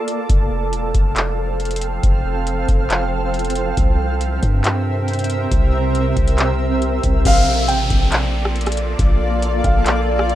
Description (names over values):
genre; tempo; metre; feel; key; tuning
hip hop, atmospheric cloud-rap; 138 BPM; 4/4; half-time; Bb lydian; A4 = 440 Hz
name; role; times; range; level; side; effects
shimmering ambient pad; sustained chords; 0.0-10.3 s; C3 to F5; -21 LUFS; right 1 dB; chorus, built-in reverb, sidechain pumping
booming analog drum machine; drums; 0.1-10.3 s; crash cymbal, handclaps, hi-hat, kick drum, rim click; -18 LUFS; equal; none
long sustained 808-style bass; bass; 0.3-10.3 s; E1 to G2; -20 LUFS; equal; none
felt-muted upright piano; melody; 7.3-10.3 s; F5 to G5; -22 LUFS; equal; low-pass filter, digital delay, plate reverb
downlifter; sound effects; 7.3-10.3 s; none; -26 LUFS; equal; none
room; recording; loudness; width
light reverb; rough home demo mix; -15 LUFS; side -13 dB against mid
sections
0.0-7.3 A section; 7.3-10.3 B section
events
break 0.0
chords
0.3 F; 3.8 C7; 7.3 Bbmaj7